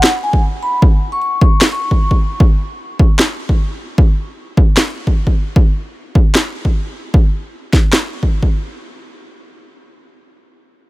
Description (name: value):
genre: future bass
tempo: 152 BPM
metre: 4/4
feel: half-time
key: unclear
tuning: A4 = 441 Hz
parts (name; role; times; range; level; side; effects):
- electronic snare drum and handclaps; drums; 0.0-8.0 s; none; -17 LUFS; equal; none
- vibraphone with soft mallets; melody; 0.2-2.1 s; G#5 to C#6; -19 LUFS; left 1 dB; sidechain pumping, dub echo
- electronic kick drum; drums; 0.3-8.5 s; none; -11 LUFS; equal; none
room: little or no reverb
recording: none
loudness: -12 LUFS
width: side -19 dB against mid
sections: 0.0-8.7 A section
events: none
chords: none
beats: 0.03 0.43 | 0.82 1.22 1.61 2.01 | 2.40 2.80 3.19 3.59 | 3.98 4.38 4.77 5.17 | 5.56 5.96 6.35 6.75 | 7.14 7.53 7.93 8.32